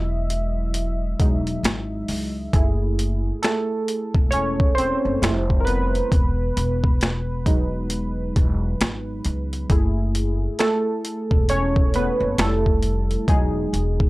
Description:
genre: lo-fi hip hop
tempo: 67 BPM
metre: 4/4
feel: swing 61% on 16ths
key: unclear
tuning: A4 = 441 Hz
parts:
  - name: warm analog keys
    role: accompaniment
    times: 0.0-14.1 s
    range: F#3 to E5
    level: -24 LUFS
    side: right 1 dB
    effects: chorus, cassette tape, low-pass filter
  - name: upright bass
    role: bass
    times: 0.0-14.1 s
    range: E1 to C#2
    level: -24 LUFS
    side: equal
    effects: none
  - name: boom bap sampler-style drum kit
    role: drums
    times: 0.3-14.1 s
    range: finger snaps, hi-hat, kick drum, snare drum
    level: -20 LUFS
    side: equal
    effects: none
room: little or no reverb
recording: dry, gritty hardware recording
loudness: -19 LUFS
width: side -20 dB against mid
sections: 0.0-14.1 A section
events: synth keys solo 0.0-14.1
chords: 0.0 Emaj7; 2.5 F#m7; 5.2 Fmaj7; 6.1 Emaj7; 9.7 F#m7; 12.4 Fmaj7; 13.3 Emaj7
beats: 0.74 1.64 | 2.53 3.43 4.32 5.22 | 6.12 7.01 7.91 8.80 | 9.70 10.59 11.49 12.38 | 13.28

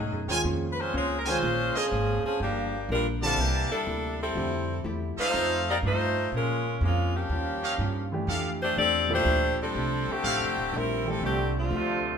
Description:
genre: jazz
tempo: 122 BPM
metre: 4/4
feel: swing 67% on 8ths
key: F major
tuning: A4 = 440 Hz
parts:
  - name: bright saxophone section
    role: melody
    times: 0.0-12.0 s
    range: D3 to D5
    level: -27 LUFS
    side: left 1 dB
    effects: none
  - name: hollow-body jazz guitar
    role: accompaniment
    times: 0.0-12.1 s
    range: F2 to C5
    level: -37 LUFS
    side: left 1 dB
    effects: none
  - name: upright bass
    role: bass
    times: 0.0-12.2 s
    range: D1 to Bb2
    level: -31 LUFS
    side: equal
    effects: none
  - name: warm baby grand piano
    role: accompaniment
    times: 0.3-11.2 s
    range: Bb2 to A4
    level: -34 LUFS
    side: right 1 dB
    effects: none
  - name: brilliant trumpet section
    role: stabs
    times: 0.3-10.5 s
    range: G4 to A5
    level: -30 LUFS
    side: right 1 dB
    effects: none
  - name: clear trombone section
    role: second line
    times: 11.2-12.2 s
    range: C3 to G3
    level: -32 LUFS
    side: right 3 dB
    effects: none
  - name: clear trumpet section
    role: melody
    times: 11.7-12.2 s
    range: A3 to F4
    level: -29 LUFS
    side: right 3 dB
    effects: none
room: wet large studio reverb, RT60 1.2 s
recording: minimal, uncompressed stereo recording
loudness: -25 LUFS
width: side -7 dB against mid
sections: 0.0-12.2 A section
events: none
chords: 0.4 Bbm9; 2.4 Gm7; 3.4 C13; 4.4 Fmaj9; 5.3 F7; 6.3 Bbm7; 7.3 Eb9; 8.3 F69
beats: | 0.45 0.94 1.42 1.91 | 2.40 2.89 3.38 3.87 | 4.36 4.85 5.34 5.83 | 6.32 6.81 7.30 7.79 | 8.28 8.77 9.26 9.75 | 10.24 10.73 11.22 11.71

